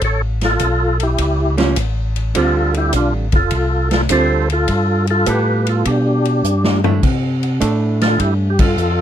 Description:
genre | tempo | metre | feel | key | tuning
soul jazz organ trio | 103 BPM | 4/4 | swing 68% on 8ths | A minor | A4 = 439 Hz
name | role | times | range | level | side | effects
percussive tonewheel organ | melody | 0.0-9.0 s | D4 to C#5 | -18 LUFS | equal | slow rotary speaker, overdrive, chorus vibrato
mellow tonewheel organ | bass | 0.0-9.0 s | F1 to C3 | -18 LUFS | equal | overdrive, chorus vibrato, slow rotary speaker
swinging big-band drum kit | drums | 0.0-9.0 s | crash cymbal, hi-hat, kick drum, ride cymbal, snare drum, toms | -21 LUFS | left 1 dB | none
archtop guitar, miked and amplified | accompaniment | 1.6-8.5 s | D3 to A4 | -20 LUFS | right 5 dB | none
room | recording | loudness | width
little or no reverb | none | -14 LUFS | side -10 dB against mid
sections
0.0-9.0 A section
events
drum fill 6.4-7.0; band accent 8.5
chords
0.0 A7b13; 2.4 Dm11; 4.7 G9; 7.0 C69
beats
| 0.02 0.61 1.19 1.77 | 2.36 2.94 3.53 4.11 | 4.70 5.28 5.86 6.45 | 7.03 7.62 8.20 8.78

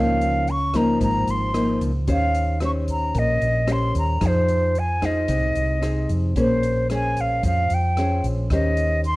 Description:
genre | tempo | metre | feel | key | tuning
bossa nova | 112 BPM | 4/4 | straight | unclear | A4 = 440 Hz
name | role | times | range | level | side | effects
bright concert flute | melody | 0.0-9.2 s | C5 to Db6 | -23 LUFS | equal | none
nylon-string guitar | accompaniment | 0.0-9.2 s | Ab2 to C5 | -24 LUFS | left 1 dB | none
hollow-body short-scale fingered electric bass | bass | 0.0-9.2 s | Ab1 to F2 | -23 LUFS | equal | none
swinging big-band drum kit | drums | 0.2-9.2 s | hi-hat, kick drum, rim click | -32 LUFS | equal | none
room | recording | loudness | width
light reverb | worn, warbling old tape, cassette tape, warbly pitch drift | -19 LUFS | side -20 dB against mid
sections
0.0-9.2 A section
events
none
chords
0.0 Db69; 2.1 Eb13; 4.2 Fm7; 6.4 Bbm9; 8.5 Eb13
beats
0.48 1.01 1.55 | 2.08 2.62 3.15 3.69 | 4.22 4.76 5.29 5.83 | 6.36 6.90 7.43 7.97 | 8.50 9.04

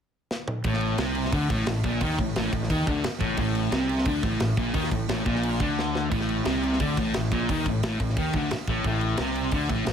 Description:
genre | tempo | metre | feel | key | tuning
heavy metal | 176 BPM | 4/4 | straight | A minor | A4 = 441 Hz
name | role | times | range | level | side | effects
tight metal drum kit | drums | 0.3-9.9 s | crash cymbal, kick drum, snare drum, toms | -30 LUFS | equal | none
fuzz fingered electric bass | bass | 0.6-9.9 s | A1 to D#2 | -31 LUFS | equal | overdrive
sludgy distorted guitar | riff | 0.7-9.9 s | A2 to D#3 | -25 LUFS | equal | overdrive
room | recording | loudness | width
small room ambience | none | -23 LUFS | side -8 dB against mid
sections
0.6-9.9 A section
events
drum fill 0.3-0.6, 5.8-6.1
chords
0.0 N.C.; 0.6 Am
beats
0.30 | 0.65 0.99 1.33 1.67 | 2.02 2.36 2.70 3.04 | 3.38 3.73 4.07 4.41 | 4.75 5.09 5.43 5.78 | 6.12 6.46 6.80 7.14 | 7.48 7.82 8.16 8.50 | 8.84 9.18 9.52 9.86

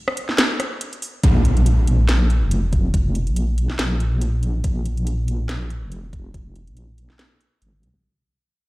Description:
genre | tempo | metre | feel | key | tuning
deep dubstep | 141 BPM | 4/4 | swing 56% on 16ths, half-time | unclear | A4 = 440 Hz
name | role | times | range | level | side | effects
garage drum kit | drums | 0.1-7.9 s | hi-hat, rim click, snare drum | -23 LUFS | equal | small room ambience
wobble bass | bass | 1.2-7.9 s | F1 to C2 | -19 LUFS | equal | chorus
electronic kick drum | drums | 1.2-6.4 s | none | -19 LUFS | equal | small room ambience
impact | sound effects | 1.2-2.9 s | none | -23 LUFS | equal | none
room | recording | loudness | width
light reverb | played on a big sound system in a bare room, stone room reverb | -18 LUFS | side -20 dB against mid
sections
0.0-1.2 A section; 1.2-8.0 B section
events
break 0.0-1.2; drop 0.0-1.2; fade-out 1.2-8.0; impact 1.2-2.9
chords
none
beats
0.39 0.81 | 1.24 1.66 2.09 2.51 | 2.94 3.36 3.79 4.21 | 4.64 5.07 5.49 5.92 | 6.34 6.77 7.19 7.62

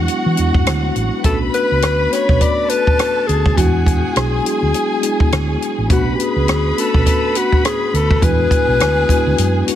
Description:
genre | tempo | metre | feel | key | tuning
lush 1970s-style soul | 103 BPM | 4/4 | swing 58% on 16ths | B dorian | A4 = 440 Hz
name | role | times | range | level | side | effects
warm studio string section | second line | 0.0-9.8 s | F#4 to B5 | -23 LUFS | equal | none
mellow tine electric piano | accompaniment | 0.0-9.8 s | F#3 to G#4 | -21 LUFS | left 1 dB | medium stereo tremolo
hollow-body short-scale fingered electric bass | bass | 0.0-9.7 s | A1 to E3 | -18 LUFS | right 1 dB | none
compact cocktail drum kit | drums | 0.1-9.8 s | hi-hat, kick drum, rim click | -18 LUFS | right 1 dB | none
clear alto saxophone | melody | 1.3-9.8 s | F#4 to D5 | -18 LUFS | left 3 dB | none
room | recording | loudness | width
light reverb, studio reverb | none | -13 LUFS | side -11 dB against mid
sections
0.0-9.8 A section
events
none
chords
0.0 E9; 1.2 Bm9; 3.6 E9; 5.9 Bm9; 8.2 E9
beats
0.09 0.67 | 1.25 1.83 2.41 3.00 | 3.58 4.16 4.74 5.32 | 5.90 6.49 7.07 7.65 | 8.23 8.81 9.39

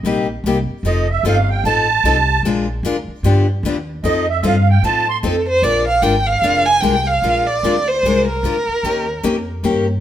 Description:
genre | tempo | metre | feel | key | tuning
acoustic string swing (jazz manouche) | 150 BPM | 4/4 | swing 62% on 8ths | Bb major | A4 = 440 Hz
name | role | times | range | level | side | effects
picked steel-string acoustic guitar | accompaniment | 0.0-9.9 s | C3 to Bb4 | -20 LUFS | left 4 dB | none
upright bass | bass | 0.0-10.0 s | F1 to A2 | -20 LUFS | equal | none
musette accordion | second line | 0.9-5.2 s | Eb5 to C6 | -17 LUFS | right 5 dB | none
warm violin | melody | 5.2-9.4 s | A4 to Ab5 | -16 LUFS | right 2 dB | none
room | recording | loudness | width
moderate stone room reverb, RT60 1.0 s | band playing live in one room | -14 LUFS | side -11 dB against mid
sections
0.0-5.6 A section; 5.6-10.0 B section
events
accordion solo 0.0-5.6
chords
0.0 Cm7; 0.8 F7; 2.4 Bb7; 3.2 G7; 4.0 F7; 5.6 Bb7; 8.8 Eb7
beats
0.04 0.44 | 0.84 1.24 1.64 2.04 | 2.44 2.84 3.23 3.63 | 4.03 4.43 4.83 5.23 | 5.63 6.03 6.43 6.83 | 7.23 7.63 8.03 8.43 | 8.84 9.24 9.64

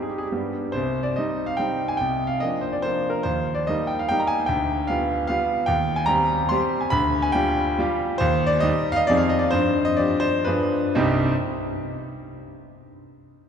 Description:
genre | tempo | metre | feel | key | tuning
classical, romantic triple-time dance for piano with dotted rhythms | 116-159 BPM | 3/4 | rubato | C minor | A4 = 438 Hz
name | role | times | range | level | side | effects
clear concert grand piano | solo | 0.0-11.3 s | C2 to C6 | -20 LUFS | equal | none
room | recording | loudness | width
wet church reverb, RT60 3.5 s | recorded in a church or concert hall | -20 LUFS | side -7 dB against mid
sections
0.7-11.0 A section; 11.0-12.4 B section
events
slowing down 7.6-11.0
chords
0.3 G; 0.7 Cm; 2.0 Bb/C; 3.2 Eb; 4.5 G7/D; 5.7 Cm/Eb; 6.9 G5/D; 8.2 Ebmaj13; 9.1 Fm7; 9.5 G5; 10.5 G7b9; 11.0 Cm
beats
0.33 | 0.74 1.18 1.59 | 2.00 2.43 2.85 | 3.24 3.68 4.10 | 4.48 4.90 5.32 | 5.70 6.11 6.53 | 6.94 7.36 7.79 | 8.21 8.65 9.10 | 9.53 9.99 10.48 | 10.97

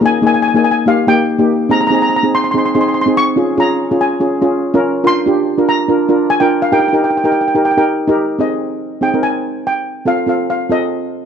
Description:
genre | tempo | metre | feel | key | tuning
calypso | 144 BPM | 4/4 | swing 54% on 16ths | Ab major | A4 = 441 Hz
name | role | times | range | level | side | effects
steel pan | melody | 0.0-11.3 s | Eb5 to Db6 | -16 LUFS | equal | none
steel pan | accompaniment | 0.0-11.2 s | Bb3 to Bb4 | -13 LUFS | equal | none
room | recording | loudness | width
light reverb, small room ambience | dry, close 1970s-style studio recording | -12 LUFS | side -7 dB against mid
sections
0.0-8.4 A section; 8.4-11.3 B section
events
none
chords
0.0 Ebsus4; 0.9 Eb; 1.7 Ab; 3.4 Db; 5.0 Bb; 6.7 Eb; 8.4 Abadd9; 10.1 F7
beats
| 0.03 0.45 0.87 1.29 | 1.70 2.12 2.54 2.96 | 3.38 3.79 4.21 4.63 | 5.05 5.47 5.88 6.30 | 6.72 7.14 7.56 7.97 | 8.39 8.81 9.23 9.65 | 10.07 10.49 10.91

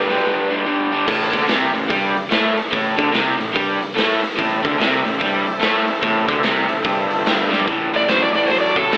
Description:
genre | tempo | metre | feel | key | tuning
blues rock power trio and southern rock | 145 BPM | 4/4 | swing 63% on 8ths | A minor | A4 = 440 Hz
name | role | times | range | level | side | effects
overdriven slide guitar | melody | 0.0-0.6, 8.0-9.0 s | A4 to D5 | -18 LUFS | equal | none
overdriven tonewheel organ | sustained chords | 0.0-1.1, 4.4-7.7 s | G3 to A4 | -25 LUFS | equal | slow rotary speaker
crunchy overdriven guitar | riff | 0.0-9.0 s | G2 to A3 | -19 LUFS | equal | none
fuzz fingered electric bass | bass | 0.1-9.0 s | G1 to A2 | -24 LUFS | equal | overdrive
raw garage drum kit | drums | 0.1-9.0 s | crash cymbal, hi-hat, kick drum, snare drum, toms | -21 LUFS | equal | none
room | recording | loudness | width
light reverb | telephone sound | -15 LUFS | side -24 dB against mid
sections
0.0-1.1 A section; 1.1-7.7 B section; 7.7-9.0 C section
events
drum fill 7.5; electric slide guitar solo 7.7-9.0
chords
0.0 G; 1.1 Am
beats
0.25 0.66 | 1.07 1.49 1.90 2.31 | 2.73 3.14 3.55 3.97 | 4.38 4.79 5.20 5.62 | 6.03 6.44 6.85 7.27 | 7.68 8.09 8.51 8.92

